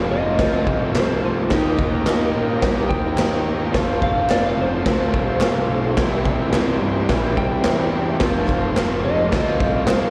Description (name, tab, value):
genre	garage rock duo or trio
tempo	107 BPM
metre	4/4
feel	straight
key	F major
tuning	A4 = 439 Hz
part	combo organ	sustained chords	0.0-10.1 s	C4 to C5	-32 LUFS	equal	none
part	raw garage guitar	riff	0.0-10.1 s	C3 to G4	-27 LUFS	equal	overdrive, slapback echo
part	fuzz picked electric bass	bass	0.0-10.1 s	F1 to Bb2	-26 LUFS	equal	overdrive
part	electric slide guitar	melody	0.1-10.1 s	Eb4 to G5	-27 LUFS	equal	slapback echo
part	raw garage drum kit	drums	0.4-10.0 s	crash cymbal, kick drum, snare drum	-23 LUFS	equal	none
part	group handclap	percussion	1.0-10.0 s	none	-36 LUFS	equal	none
room	moderate club reverb, RT60 0.8 s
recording	live gig heard through the venue's PA, recital hall reverb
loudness	-20 LUFS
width	mono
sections	0.0-10.1 A section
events	none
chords	0.0 F; 1.5 Eb; 3.7 F; 6.0 C; 8.2 F